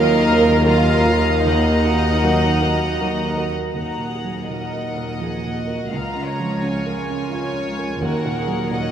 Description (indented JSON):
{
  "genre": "cinematic, emotional film score for orchestra",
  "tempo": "77-86 BPM",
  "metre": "3/4",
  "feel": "rubato",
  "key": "Eb minor",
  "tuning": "A4 = 440 Hz",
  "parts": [
    { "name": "warm studio violin section", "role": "melody", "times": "0.0-8.9 s", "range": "Gb5 to Bb5", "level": "-29 LUFS", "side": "left 3 dB", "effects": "none" },
    { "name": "rich studio violin section", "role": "second line", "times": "0.0-8.9 s", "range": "Bb4 to Gb5", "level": "-25 LUFS", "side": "left 1 dB", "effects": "none" },
    { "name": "warm baby grand piano", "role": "accompaniment", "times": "0.0-8.9 s", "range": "Db2 to Bb4", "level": "-24 LUFS", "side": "right 3 dB", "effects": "none" },
    { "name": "warm studio viola section", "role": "accompaniment", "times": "0.0-8.9 s", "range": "Eb4 to Bb4", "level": "-25 LUFS", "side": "right 2 dB", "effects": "none" },
    { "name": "dark studio double bass section", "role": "bass", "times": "0.0-8.7 s", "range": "Db2 to Eb2", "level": "-24 LUFS", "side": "equal", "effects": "none" },
    { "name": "warm studio cello section", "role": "bass", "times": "0.0-8.9 s", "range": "Db2 to Eb2", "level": "-24 LUFS", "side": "equal", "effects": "none" }
  ],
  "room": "wet huge ambient reverb, RT60 7.7 s",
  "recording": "in a vast, echoing space",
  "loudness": "-17 LUFS",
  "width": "side -9 dB against mid",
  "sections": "0.0-3.8 A section; 3.8-8.9 B section",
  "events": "none",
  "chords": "0.0 Ebmadd9; 1.4 Ebm; 3.8 Ebmadd9; 5.9 Bbm/Db; 8.0 Ebm"
}